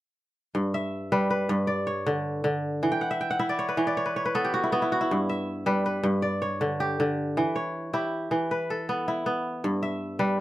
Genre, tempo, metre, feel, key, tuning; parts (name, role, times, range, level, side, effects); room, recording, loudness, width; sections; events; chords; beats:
west african traditional; 106 BPM (dotted quarters); 12/8; straight; G lydian; A4 = 440 Hz
kora; arpeggios; 0.5-10.4 s; G2 to G5; -25 LUFS; equal
moderate studio reverb, RT60 0.5 s; -25 LUFS; side -15 dB against mid
0.6-10.4 A section
kora fill 2.9-5.1
0.6 G; 2.8 E5; 5.1 G; 7.4 Em; 9.6 G
| 0.56 1.12 1.69 2.26 | 2.83 3.40 3.96 4.53 | 5.10 5.67 6.23 6.80 | 7.37 7.94 8.50 9.07 | 9.64 10.21